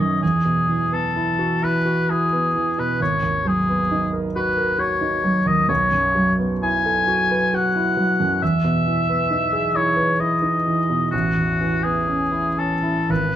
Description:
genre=classical, impressionist duo for oboe and grand piano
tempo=66 BPM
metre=3/4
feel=uneven beats, rubato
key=unclear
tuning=A4 = 441 Hz
part: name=warm oboe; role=melody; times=0.0-13.4 s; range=F#4 to G#5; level=-20 LUFS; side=left 2 dB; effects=none
part: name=warm concert grand piano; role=accompaniment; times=0.0-13.4 s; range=G#1 to B4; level=-21 LUFS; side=right 2 dB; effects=none
room=moderate recital hall reverb, RT60 1.6 s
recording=close, detailed microphones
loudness=-18 LUFS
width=side -11 dB against mid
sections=0.0-13.4 A section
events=none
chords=0.2 Esus2; 3.0 G#m9; 5.7 B7sus4; 8.4 Emaj7; 11.1 Aadd9

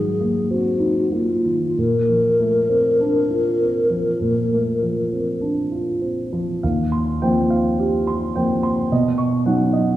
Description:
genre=classical, impressionist duo for alto flute and grand piano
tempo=46-54 BPM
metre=4/4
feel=rubato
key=Bb major, Eb major from 6.6 s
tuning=A4 = 439 Hz
part: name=mellow hollow wooden-headed alto flute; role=melody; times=0.0-5.4 s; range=F4 to Bb4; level=-19 LUFS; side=left 1 dB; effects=none
part: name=dark concert grand piano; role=accompaniment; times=0.0-10.0 s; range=Eb2 to C#6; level=-19 LUFS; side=right 1 dB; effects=none
room=wet recital hall reverb, RT60 1.8 s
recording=heard from further back in the room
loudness=-17 LUFS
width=side -14 dB against mid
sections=0.0-6.6 A section; 6.6-10.0 B section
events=none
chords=0.0 Ab9; 1.8 Bbmaj9; 6.6 Eb69; 8.9 Badd9

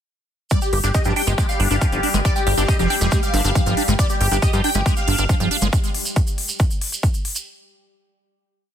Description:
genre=psychedelic trance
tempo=138 BPM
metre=4/4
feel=straight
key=unclear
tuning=A4 = 440 Hz
part: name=supersaw stab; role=melody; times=0.5-5.6 s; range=G4 to G5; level=-25 LUFS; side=equal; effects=phaser, sidechain pumping, digital delay
part: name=bubbling stepped-filter texture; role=sustained chords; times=0.5-5.8 s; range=G3 to G4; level=-28 LUFS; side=left 3 dB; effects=chorus, built-in reverb, sidechain pumping
part: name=liquid acid bass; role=riff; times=0.5-5.7 s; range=F3 to G4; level=-24 LUFS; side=right 1 dB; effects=phaser, auto-pan, sidechain pumping, digital delay
part: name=electronic hi-hat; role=drums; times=0.5-7.4 s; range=none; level=-28 LUFS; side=left 2 dB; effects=overdrive
part: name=electronic kick drum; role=drums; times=0.5-7.1 s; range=none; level=-20 LUFS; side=equal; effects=overdrive
part: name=tube shaker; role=percussion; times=0.5-7.4 s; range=none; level=-30 LUFS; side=right 5 dB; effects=none
part: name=plucky analog bass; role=bass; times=0.7-5.7 s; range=F1 to G2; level=-20 LUFS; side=equal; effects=none
part: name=metallic wobble bass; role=second line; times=0.8-3.2 s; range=C4 to D4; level=-34 LUFS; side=left 3 dB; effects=none
room=little or no reverb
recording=dense, heavily limited modern master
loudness=-17 LUFS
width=side -10 dB against mid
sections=0.5-7.5 groove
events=none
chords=0.5 G5

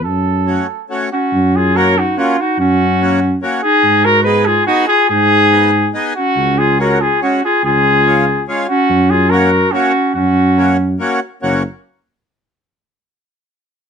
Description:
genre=alpine folk, alpine dance band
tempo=142 BPM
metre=3/4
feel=straight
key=F# major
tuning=A4 = 440 Hz
part: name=mellow trumpet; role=melody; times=0.0-11.0 s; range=E#4 to B4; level=-14 LUFS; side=left 2 dB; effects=none
part: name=mellow tuba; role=bass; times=0.0-11.6 s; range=F#1 to G#2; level=-16 LUFS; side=equal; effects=none
part: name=accordion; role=accompaniment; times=0.5-11.6 s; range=G#3 to G#4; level=-18 LUFS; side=left 1 dB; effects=none
part: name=warm clarinet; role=second line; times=1.1-11.0 s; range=C#4 to G#4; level=-18 LUFS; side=right 4 dB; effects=none
room=light reverb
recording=close, detailed microphones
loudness=-11 LUFS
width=side -7 dB against mid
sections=0.0-1.3 A section; 1.3-11.4 B section; 11.4-12.7 C section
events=none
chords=0.1 F#m; 1.3 F#; 3.8 G#m; 6.4 C#sus4; 7.6 C#; 8.9 F#

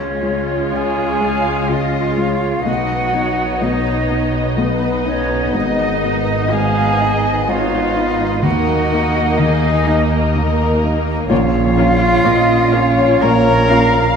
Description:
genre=cinematic, emotional film score for orchestra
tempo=63 BPM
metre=3/4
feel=rubato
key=Eb minor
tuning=A4 = 440 Hz
part: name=muted cello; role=melody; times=0.0-14.2 s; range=Db4 to Bb4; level=-22 LUFS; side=right 4 dB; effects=none
part: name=muted studio violin section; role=melody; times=0.0-13.8 s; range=Db5 to D#5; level=-28 LUFS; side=left 3 dB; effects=none
part: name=hollow concert flute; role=second line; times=0.0-14.2 s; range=Db5 to Bb5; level=-21 LUFS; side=left 1 dB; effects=none
part: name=felt-muted upright piano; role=accompaniment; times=0.0-14.2 s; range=Ab1 to D#5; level=-21 LUFS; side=left 2 dB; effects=none
part: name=muted studio viola section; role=accompaniment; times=0.0-13.8 s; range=Ab3 to F4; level=-24 LUFS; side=right 2 dB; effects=none
part: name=dark French horn section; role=sustained chords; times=0.0-14.0 s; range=Ab3 to F4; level=-24 LUFS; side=left 5 dB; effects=none
part: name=concert harp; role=arpeggios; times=0.0-14.2 s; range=Ab2 to D#6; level=-26 LUFS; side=left 7 dB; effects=none
part: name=muted studio double bass section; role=bass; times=0.0-14.1 s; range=Ab1 to Eb2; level=-22 LUFS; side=right 3 dB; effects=none
part: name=muted symphonic cello section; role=bass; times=0.0-14.1 s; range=Eb2 to Db3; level=-25 LUFS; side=right 4 dB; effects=none
part: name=muted symphonic violin section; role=second line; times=0.7-14.2 s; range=Ab4 to F5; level=-24 LUFS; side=left 2 dB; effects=none
room=moderate scoring stage reverb, RT60 1.8 s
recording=minimal, uncompressed stereo recording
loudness=-13 LUFS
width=side -6 dB against mid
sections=0.0-14.2 A section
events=none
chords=0.0 Db; 2.7 B; 5.5 Abm; 8.4 Ebm; 11.3 Bbm

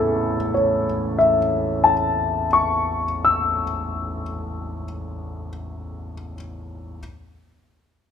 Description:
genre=classical, romantic nocturne for solo piano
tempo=26 BPM (dotted quarters)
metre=12/8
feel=rubato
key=A major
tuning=A4 = 439 Hz
part: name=warm concert grand piano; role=solo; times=0.0-7.0 s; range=E2 to E6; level=-20 LUFS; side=left 2 dB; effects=none
room=moderate recital hall reverb, RT60 1.7 s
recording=minimal, uncompressed stereo recording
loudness=-19 LUFS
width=side -8 dB against mid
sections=0.0-4.9 A section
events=none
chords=0.0 A

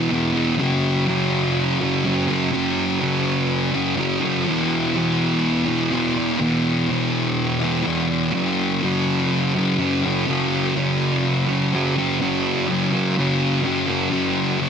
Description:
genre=rock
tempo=124 BPM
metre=4/4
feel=straight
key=unclear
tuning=A4 = 439 Hz
part: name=thick fuzz guitar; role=solo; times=0.0-14.7 s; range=E2 to F#3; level=-18 LUFS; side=equal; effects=distortion, wide subtle chorus
room=light reverb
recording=dense, heavily limited modern master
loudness=-18 LUFS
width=side -7 dB against mid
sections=0.0-12.2 A section; 12.2-14.7 B section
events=none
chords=0.0 E5; 0.6 F#5; 4.5 E5; 8.3 F#5

